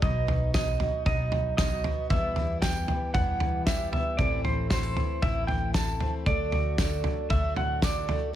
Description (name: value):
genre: indie folk with a building arrangement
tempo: 115 BPM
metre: 4/4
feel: straight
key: unclear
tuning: A4 = 443 Hz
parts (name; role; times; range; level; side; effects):
- electric guitar through a small old amp; melody; 0.0-8.3 s; C5 to A5; -30 LUFS; right 3 dB; tremolo
- fingerpicked steel-string acoustic guitar; accompaniment; 0.0-8.3 s; E2 to A4; -38 LUFS; left 3 dB; none
- picked twelve-string acoustic guitar; accompaniment; 0.0-8.3 s; E2 to F#4; -38 LUFS; left 6 dB; none
- upright bass; bass; 0.0-8.1 s; A1 to E2; -32 LUFS; equal; none
- loose indie drum kit; drums; 0.0-8.2 s; kick drum, snare drum, toms; -28 LUFS; equal; none
- tambourine; percussion; 0.5-8.0 s; none; -43 LUFS; right 15 dB; none
room: light reverb, studio reverb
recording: none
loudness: -25 LUFS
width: side -12 dB against mid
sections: 0.0-8.4 A section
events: none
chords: 0.0 B; 2.1 Em; 4.2 Am; 6.3 D